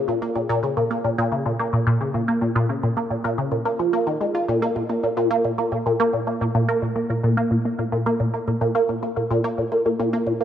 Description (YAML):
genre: ambient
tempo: 109 BPM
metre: 4/4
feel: straight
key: Bb minor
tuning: A4 = 439 Hz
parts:
  - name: resonant blip pluck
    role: solo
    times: 0.0-10.4 s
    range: Bb2 to F4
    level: -20 LUFS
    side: equal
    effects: phaser, analog chorus, tape echo
room: wet plate reverb, RT60 3.7 s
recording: none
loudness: -20 LUFS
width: side -10 dB against mid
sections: 0.0-10.4 A section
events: none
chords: none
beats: | 0.08 0.63 1.18 1.73 | 2.28 2.83 3.38 3.94 | 4.49 5.04 5.59 6.14 | 6.69 7.24 7.79 8.34 | 8.89 9.44 9.99